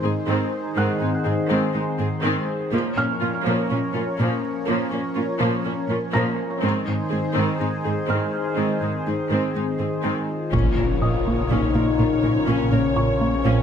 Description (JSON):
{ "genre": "cinematic, hybrid orchestral and electronic film score", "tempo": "123 BPM", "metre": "4/4", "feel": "straight", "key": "Bb minor", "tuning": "A4 = 440 Hz", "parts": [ { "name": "clear symphonic viola section", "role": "accompaniment", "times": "0.0-13.6 s", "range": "Eb3 to Db5", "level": "-27 LUFS", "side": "right 1 dB", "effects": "none" }, { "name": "chorused pulse-width pad", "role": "sustained chords", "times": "0.0-13.6 s", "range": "Db3 to Db5", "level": "-26 LUFS", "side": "left 1 dB", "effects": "none" }, { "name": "glassy wavetable pluck", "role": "arpeggios", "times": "0.0-13.6 s", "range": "Ab3 to Bb4", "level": "-30 LUFS", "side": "left 1 dB", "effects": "chorus, digital delay" }, { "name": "rich symphonic cello section", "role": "bass", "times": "0.0-13.5 s", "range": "Ab2 to Bb2", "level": "-27 LUFS", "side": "right 2 dB", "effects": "none" }, { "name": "felt-muted upright piano", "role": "texture", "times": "0.8-13.6 s", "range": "Db5 to Bb6", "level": "-31 LUFS", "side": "right 1 dB", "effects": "digital delay" }, { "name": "mellow French horn section", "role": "sustained chords", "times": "10.3-13.6 s", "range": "C4 to F4", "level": "-24 LUFS", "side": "left 6 dB", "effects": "none" }, { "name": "rubbery square bass", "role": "riff", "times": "10.5-13.6 s", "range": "Bb2 to Bb3", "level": "-24 LUFS", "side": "right 2 dB", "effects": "none" }, { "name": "phased detuned saw bass", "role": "bass", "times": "10.5-13.6 s", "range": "Bb1", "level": "-27 LUFS", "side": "equal", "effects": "phaser" }, { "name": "rich symphonic double bass section", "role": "bass", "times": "10.5-13.5 s", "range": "Bb1", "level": "-29 LUFS", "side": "right 2 dB", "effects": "none" }, { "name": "taiko ensemble", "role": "drums", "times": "10.5-11.5 s", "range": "none", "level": "-30 LUFS", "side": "equal", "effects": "none" }, { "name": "impact", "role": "sound effects", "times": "10.5-12.5 s", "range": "none", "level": "-30 LUFS", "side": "left 1 dB", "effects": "none" } ], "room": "light reverb", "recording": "close, detailed microphones", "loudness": "-20 LUFS", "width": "side -8 dB against mid", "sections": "0.0-10.5 A section; 10.5-13.6 B section", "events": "build-up 0.0-10.5; impact 10.5-12.5", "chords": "0.0 Ab; 2.7 Bbm; 6.6 Ab; 10.5 Bbm" }